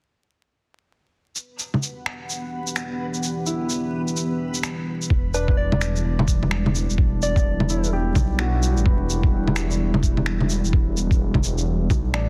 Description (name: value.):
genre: future garage.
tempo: 128 BPM.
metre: 4/4.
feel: swing 62% on 16ths.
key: E minor.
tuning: A4 = 440 Hz.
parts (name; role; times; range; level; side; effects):
dark analog pad; sustained chords; 1.4-12.3 s; E3 to F#5; -31 LUFS; equal; chorus, sidechain pumping.
electronic shaker, bongos and finger snaps; drums; 1.4-12.3 s; none; -28 LUFS; equal; soft clipping on snare.
backwards swelling texture; texture; 1.9-5.1 s; B3 to B4; -36 LUFS; equal; built-in reverb.
warm upright piano; accompaniment; 3.5-12.3 s; D4 to B4; -36 LUFS; equal; vintage 12-bit sampler grit, sidechain pumping, tape echo.
swelling detuned saw bass; bass; 5.1-12.3 s; E1 to B1; -26 LUFS; equal; none.
electronic kick drum; drums; 5.1-12.0 s; none; -22 LUFS; equal; none.
soft struck synth lead; melody; 5.3-7.9 s; B4 to D5; -32 LUFS; equal; chorus, delay.
room: light reverb, digital ambience.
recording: dense, heavily limited modern master, vinyl crackle.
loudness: -22 LUFS.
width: mono.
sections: 1.4-5.1 A section; 5.1-12.3 B section.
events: fade-in on analog synth pad 1.4-5.1.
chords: 1.4 Em7.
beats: | 1.36 1.83 2.29 2.76 | 3.23 3.70 4.17 4.64 | 5.11 5.58 6.04 6.51 | 6.98 7.45 7.92 8.39 | 8.86 9.33 9.79 10.26 | 10.73 11.20 11.67 12.14.